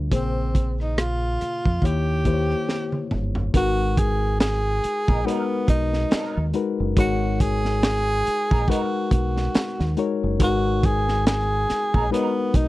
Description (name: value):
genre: R&B, neo-soul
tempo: 70 BPM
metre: 4/4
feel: swing 57% on 16ths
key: G# minor from 3.5 s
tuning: A4 = 440 Hz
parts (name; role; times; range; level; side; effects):
- reed electric piano; accompaniment; 0.0-12.7 s; A#2 to C#5; -27 LUFS; left 6 dB; none
- deep dub fingered electric bass; bass; 0.0-12.7 s; F#1 to E#2; -24 LUFS; right 1 dB; none
- breathy tenor saxophone; melody; 0.1-12.7 s; B3 to G#4; -25 LUFS; right 1 dB; none
- crunchy breakbeat drum kit; drums; 0.1-12.7 s; hi-hat, kick drum, rim click, snare drum, toms; -22 LUFS; right 1 dB; none
- electric guitar through a small old amp; second line; 5.1-12.3 s; F#3 to A#4; -31 LUFS; right 4 dB; wah, ensemble chorus
room: little or no reverb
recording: dry, close 1970s-style studio recording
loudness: -20 LUFS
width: side -17 dB against mid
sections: 0.0-3.5 A section; 3.5-12.7 B section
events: drum fill 2.7-3.5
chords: 0.1 A#m9; 1.8 D#7b9; 3.5 G#m9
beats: | 0.11 0.97 1.82 2.68 | 3.54 4.40 5.25 6.11 | 6.97 7.83 8.68 9.54 | 10.40 11.25 12.11